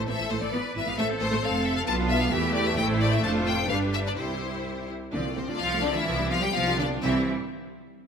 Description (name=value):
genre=quick classical-period movement for string orchestra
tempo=119-134 BPM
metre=2/4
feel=rubato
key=C major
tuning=A4 = 441 Hz
part: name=clear symphonic violin section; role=melody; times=0.0-7.3 s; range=C5 to A5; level=-29 LUFS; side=left 6 dB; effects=none
part: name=rich symphonic violin section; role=second line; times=0.0-7.3 s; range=C4 to C5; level=-33 LUFS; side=left 2 dB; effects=none
part: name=rich symphonic cello section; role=bass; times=0.0-7.3 s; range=C3 to B4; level=-32 LUFS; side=right 2 dB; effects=none
part: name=rich studio viola section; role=accompaniment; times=0.1-7.3 s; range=E3 to F4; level=-30 LUFS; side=right 1 dB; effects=none
part: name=rich symphonic double bass section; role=bass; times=0.1-7.3 s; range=F1 to E2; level=-30 LUFS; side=right 2 dB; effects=none
room=moderate concert hall reverb, RT60 2.0 s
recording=none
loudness=-24 LUFS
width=side -7 dB against mid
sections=0.0-5.1 A section; 5.1-7.0 B section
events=none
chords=0.0 Am; 0.5 E7; 1.0 Am; 1.4 F; 1.9 Bm7b5; 2.3 Em; 2.8 Am; 3.2 Dm/F; 3.7 G; 4.2 C; 5.1 F/C; 6.1 G7/C; 7.0 C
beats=0.08 | 0.53 0.98 | 1.43 1.88 | 2.33 2.78 | 3.24 3.70 | 4.18 4.66 | 5.14 5.60 | 6.06 6.53 | 7.03